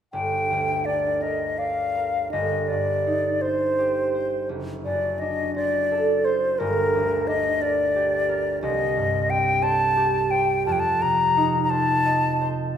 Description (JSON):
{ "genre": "classical, romantic duo for flute and harp", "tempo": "54-61 BPM (dotted quarters)", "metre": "6/8", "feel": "rubato", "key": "G minor", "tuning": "A4 = 440 Hz", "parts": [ { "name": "silver concert flute", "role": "melody", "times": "0.1-12.5 s", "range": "Bb4 to Bb5", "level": "-22 LUFS", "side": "left 2 dB", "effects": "none" }, { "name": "concert harp", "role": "accompaniment", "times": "0.1-12.8 s", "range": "F#1 to Eb5", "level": "-26 LUFS", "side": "right 3 dB", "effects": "none" } ], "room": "moderate scoring stage reverb, RT60 1.6 s", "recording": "minimal, uncompressed stereo recording", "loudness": "-20 LUFS", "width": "side -8 dB against mid", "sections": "0.1-12.8 A section", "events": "none", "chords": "0.1 Gm; 2.3 Cm/G; 4.5 D7/F#; 6.6 Gm; 8.6 Cm; 10.7 F7", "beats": "| 0.13 1.23 | 2.33 3.42 | 4.50 5.56 | 6.59 7.62 | 8.63 9.63 | 10.66 11.70 | 12.76" }